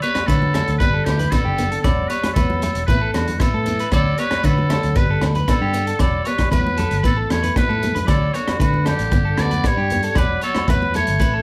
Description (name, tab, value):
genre	highlife guitar band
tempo	115 BPM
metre	4/4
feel	straight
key	D major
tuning	A4 = 440 Hz
part	trumpet with metal mute	melody	0.0-11.4 s	F#4 to D5	-26 LUFS	equal	none
part	breathy trombone	second line	0.0-11.4 s	D3 to B3	-32 LUFS	equal	none
part	picked steel-string acoustic guitar	accompaniment	0.0-11.2 s	A3 to C#4	-32 LUFS	equal	none
part	electric guitar at the edge of break-up	arpeggios	0.0-11.4 s	G4 to D5	-28 LUFS	equal	none
part	crunchy breakbeat drum kit	drums	0.0-11.3 s	hi-hat, kick drum, rim click	-24 LUFS	equal	none
part	shekere	percussion	0.0-11.3 s	none	-34 LUFS	equal	none
part	agogo bells	percussion	0.2-11.1 s	none	-35 LUFS	equal	none
part	congas	percussion	0.2-11.1 s	none	-31 LUFS	equal	none
part	fingered electric bass	bass	0.3-11.4 s	E1 to D3	-24 LUFS	equal	none
room	light reverb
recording	band playing live in one room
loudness	-19 LUFS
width	mono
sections	0.0-11.4 A section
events	drum fill 7.6-8.1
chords	0.0 D; 0.8 G; 1.8 Esus2; 2.9 A; 3.9 D; 5.0 G; 6.0 Esus2; 7.0 A; 8.1 D5; 9.1 G; 10.2 E5